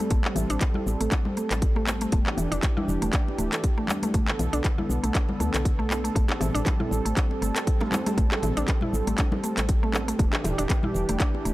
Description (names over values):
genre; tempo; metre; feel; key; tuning
afro house; 119 BPM; 4/4; swing 56% on 16ths; A minor; A4 = 437 Hz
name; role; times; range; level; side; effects
warm analog pad; sustained chords; 0.0-11.5 s; D3 to A4; -31 LUFS; right 2 dB; chorus, vintage 12-bit sampler grit, sidechain pumping
mallet-like synth pluck; arpeggios; 0.0-11.5 s; E3 to A4; -31 LUFS; equal; chorus, sidechain pumping, tape echo
afro-pop drum kit; drums; 0.0-11.5 s; handclaps, hi-hat, shaker, toms; -31 LUFS; equal; none
woody FM bass; bass; 0.1-11.5 s; D1 to D2; -29 LUFS; equal; sidechain pumping
electronic kick drum; drums; 0.1-11.3 s; none; -24 LUFS; equal; none
congas; percussion; 0.1-11.4 s; none; -34 LUFS; left 2 dB; none
bongos; percussion; 6.3-10.8 s; none; -35 LUFS; right 2 dB; none
room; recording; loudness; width
little or no reverb; dry, gritty hardware recording; -22 LUFS; side -17 dB against mid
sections
0.0-11.5 A section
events
none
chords
0.0 Am7; 2.1 Em7; 4.1 Bm7; 6.2 Am7; 10.2 Em7